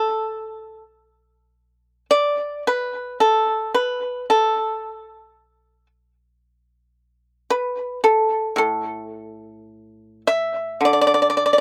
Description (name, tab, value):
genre	chinese traditional, Chinese solo plucked strings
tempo	52-56 BPM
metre	4/4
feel	rubato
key	unclear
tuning	A4 = 440 Hz
part	pipa	solo	0.0-11.6 s	A2 to E5	-21 LUFS	equal	slapback echo
room	light reverb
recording	recorded outdoors, with no room sound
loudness	-21 LUFS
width	mono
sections	0.0-11.6 A section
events	none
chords	none